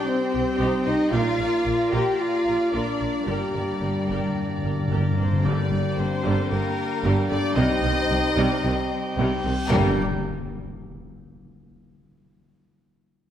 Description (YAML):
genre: cinematic, epic orchestral film score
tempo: 112 BPM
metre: 4/4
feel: straight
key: G minor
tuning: A4 = 435 Hz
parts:
  - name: clear symphonic violin section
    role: melody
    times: 0.0-10.0 s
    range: Bb4 to G5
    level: -32 LUFS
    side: left 2 dB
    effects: none
  - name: warm symphonic violin section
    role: second line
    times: 0.0-10.0 s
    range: G3 to G5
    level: -32 LUFS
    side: left 3 dB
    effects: none
  - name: rich symphonic viola section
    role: accompaniment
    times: 0.0-10.0 s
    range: C3 to D5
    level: -30 LUFS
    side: right 1 dB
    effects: none
  - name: chamber organ, sparkling flutes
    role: sustained chords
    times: 0.0-10.0 s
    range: G3 to G5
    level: -30 LUFS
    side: equal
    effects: none
  - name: dark French horn section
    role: sustained chords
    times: 0.0-9.9 s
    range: G3 to G4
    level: -28 LUFS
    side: left 1 dB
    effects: none
  - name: clear symphonic cello section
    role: bass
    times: 0.0-10.0 s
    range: C2 to G4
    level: -30 LUFS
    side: right 2 dB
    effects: none
  - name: clear symphonic double bass section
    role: bass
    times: 0.3-10.0 s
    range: G1 to C2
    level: -28 LUFS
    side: right 3 dB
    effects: none
  - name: timpani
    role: percussion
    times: 3.3-6.2, 9.7-10.0 s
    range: G2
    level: -27 LUFS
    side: left 1 dB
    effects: none
  - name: reverse cymbal and impact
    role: sound effects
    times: 9.4-11.9 s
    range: none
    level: -35 LUFS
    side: equal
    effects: none
room: wet scoring stage reverb, RT60 1.8 s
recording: none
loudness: -21 LUFS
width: side -10 dB against mid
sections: 0.0-5.5 A section; 5.5-9.7 B section; 9.7-11.9 C section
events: timpani fill 3.3-5.5; reverse cymbal 9.4-9.7; impact 9.7-11.9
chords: 0.0 Cm; 1.1 Bb; 3.3 Gm; 7.6 Cm; 9.7 Gm